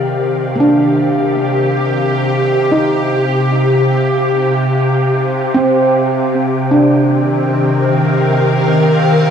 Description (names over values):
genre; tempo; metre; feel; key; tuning
ambient; free time; none; none; C minor; A4 = 441 Hz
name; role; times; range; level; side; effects
evolving wavetable pad; sustained chords; 0.0-9.3 s; C3 to F5; -14 LUFS; equal; ensemble chorus, built-in reverb
bowed-like drone; drone; 0.0-9.3 s; C3 to G4; -18 LUFS; left 1 dB; built-in reverb
wind-like tuned noise texture; texture; 0.0-9.3 s; G4 to G5; -24 LUFS; equal; built-in reverb
handpan; arpeggios; 0.6-9.3 s; Bb3 to Eb4; -16 LUFS; right 1 dB; tape echo
room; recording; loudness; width
wet booth ambience, RT60 0.2 s; home recording on cassette; -11 LUFS; side -8 dB against mid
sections
0.0-9.3 A section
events
fade-in on ambient pad 0.0-9.3; fade-in on synth texture 0.0-9.3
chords
0.0 Cm11